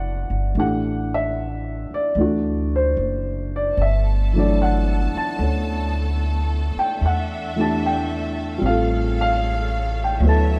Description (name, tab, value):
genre	jazz ballad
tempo	75 BPM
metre	4/4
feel	swing 69% on 8ths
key	unclear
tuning	A4 = 438 Hz
part	dark baby grand piano	accompaniment	0.0-10.6 s	E3 to A5	-24 LUFS	equal	none
part	upright bass	bass	0.0-10.6 s	F#1 to E2	-24 LUFS	equal	none
part	rich studio string section	sustained chords	3.7-10.6 s	C#3 to A5	-33 LUFS	equal	none
room	light reverb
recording	heard from further back in the room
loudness	-21 LUFS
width	mono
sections	0.0-10.6 A section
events	none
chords	0.0 Bm7; 0.6 A5; 2.2 D7; 3.8 Gmaj9; 7.0 Em7; 8.6 A7alt